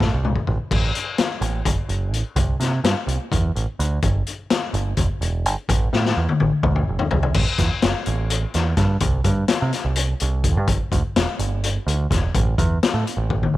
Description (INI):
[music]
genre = psychedelic rock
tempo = 253 BPM (eighths)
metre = 7/8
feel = straight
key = A dorian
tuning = A4 = 440 Hz
[part]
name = deep dub picked electric bass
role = bass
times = 0.0-13.6 s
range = E1 to C3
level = -21 LUFS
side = right 2 dB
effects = none
[part]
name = raw garage drum kit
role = drums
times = 0.0-13.5 s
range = crash cymbal, hi-hat, kick drum, snare drum, toms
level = -21 LUFS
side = left 2 dB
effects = none
[sound]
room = little or no reverb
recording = 1960s-style stereo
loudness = -19 LUFS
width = side -16 dB against mid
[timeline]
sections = 0.7-7.3 A section; 7.3-13.6 B section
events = drum fill 0.0-0.7, 5.9-7.3, 13.3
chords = none